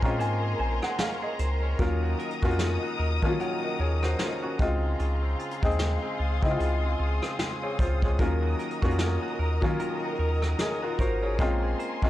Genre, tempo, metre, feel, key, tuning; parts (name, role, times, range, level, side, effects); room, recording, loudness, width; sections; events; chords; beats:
contemporary R&B; 75 BPM; 4/4; swing 58% on 16ths; Eb dorian; A4 = 441 Hz
felt-muted upright piano; accompaniment; 0.0-12.1 s; F3 to Bb5; -30 LUFS; left 2 dB
muted studio string section; sustained chords; 0.0-12.1 s; Ab4 to Eb6; -34 LUFS; left 3 dB; sidechain pumping
direct-recorded clean electric guitar; arpeggios; 0.0-12.1 s; Db3 to C5; -37 LUFS; right 5 dB; analog delay
round analog bass; bass; 0.0-12.1 s; Ab1 to Eb3; -27 LUFS; equal
vintage brush drum kit; drums; 0.0-12.1 s; hi-hat, kick drum, rim click, snare drum; -29 LUFS; equal
small room ambience; transformer saturation; -25 LUFS; side -14 dB against mid
0.0-12.1 A section
felt piano fill 0.0-1.8; break 0.2-1.8
0.0 Bbm9; 1.8 Ebm7; 4.6 Dbmaj7; 8.2 Ebm7; 11.4 Bbm9
0.19 0.99 | 1.79 2.59 3.39 4.19 | 4.99 5.79 6.59 7.39 | 8.19 8.99 9.79 10.59 | 11.39